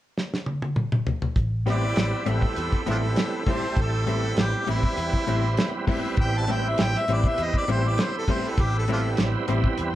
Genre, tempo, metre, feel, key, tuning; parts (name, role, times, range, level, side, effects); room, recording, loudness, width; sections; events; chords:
straight-eighth soul blues; 100 BPM; 4/4; swing 53% on 16ths; A minor; A4 = 441 Hz
damped 70s drum kit; drums; 0.2-9.9 s; hi-hat, kick drum, snare drum, toms; -25 LUFS; equal
vintage muted fingered electric bass; bass; 1.4-9.9 s; A1 to E2; -26 LUFS; equal
clear harmonica; melody; 1.7-9.2 s; D4 to A5; -28 LUFS; equal
bright tonewheel organ; accompaniment; 1.7-9.9 s; G3 to E4; -29 LUFS; right 3 dB; overdrive, chorus vibrato, slow rotary speaker
direct-recorded clean electric guitar; stabs; 1.7-9.7 s; A2 to E4; -31 LUFS; left 5 dB; spring reverb
moderate large studio reverb, RT60 0.9 s; band playing live in one room, cassette tape; -22 LUFS; side -14 dB against mid
0.0-1.4 A section; 1.4-9.9 B section
drum fill 0.2-1.4; harmonica solo 1.4-9.9; tonewheel organ fill 9.8
0.0 N.C.; 1.4 Am7